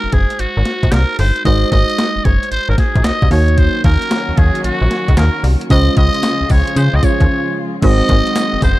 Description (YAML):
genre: R&B, new jack swing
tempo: 113 BPM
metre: 4/4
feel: swing 66% on 16ths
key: unclear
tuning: A4 = 439 Hz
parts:
  - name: trumpet with metal mute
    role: melody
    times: 0.0-8.8 s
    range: Gb4 to Eb5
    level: -19 LUFS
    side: equal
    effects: none
  - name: mellow FM electric piano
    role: accompaniment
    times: 0.0-8.8 s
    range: Ab3 to Db5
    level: -21 LUFS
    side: right 2 dB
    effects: chorus
  - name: slap-like FM bass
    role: bass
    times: 0.0-8.7 s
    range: Gb1 to Db3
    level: -14 LUFS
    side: equal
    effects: none
  - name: crisp 8-bit digital drum machine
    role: drums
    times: 0.1-8.8 s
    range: crash cymbal, handclaps, hi-hat, kick drum, snare drum, tambourine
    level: -16 LUFS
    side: equal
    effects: overdrive
  - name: rich studio string section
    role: sustained chords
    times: 3.6-8.8 s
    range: Db3 to Gb4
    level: -24 LUFS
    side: left 2 dB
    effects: none
room: little or no reverb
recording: dark, warm production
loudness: -12 LUFS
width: side -17 dB against mid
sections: 0.0-7.8 A section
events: break 7.3-7.8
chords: 0.0 Ab7; 3.3 Ebm7; 5.7 Dbmaj7; 7.8 Ab7